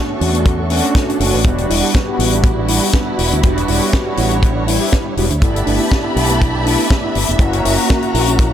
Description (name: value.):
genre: nu-disco, nu disco.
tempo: 121 BPM.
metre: 4/4.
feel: swing 55% on 16ths.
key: unclear.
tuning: A4 = 440 Hz.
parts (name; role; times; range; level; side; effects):
mellow synth brass; accompaniment; 0.0-8.5 s; G3 to F#4; -18 LUFS; equal; chorus, sidechain pumping, dub echo.
warm studio string section; sustained chords; 0.0-8.5 s; B3 to C#6; -23 LUFS; equal; sidechain pumping.
soft round pluck; arpeggios; 0.1-8.4 s; A3 to D5; -25 LUFS; right 3 dB; chorus, sidechain pumping, dub echo.
fingered electric bass with an envelope filter; bass; 0.2-8.5 s; E1 to E2; -18 LUFS; equal; sidechain pumping.
tight funk drum kit; drums; 0.2-8.5 s; hi-hat, snare drum; -21 LUFS; left 4 dB; none.
kick drum; drums; 0.5-8.5 s; none; -15 LUFS; equal; none.
room: light reverb, small room ambience.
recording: none.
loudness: -13 LUFS.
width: side -10 dB against mid.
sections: 0.0-8.5 A section.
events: none.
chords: 0.0 Bm9; 1.5 Em7; 5.4 G69; 7.4 F#7.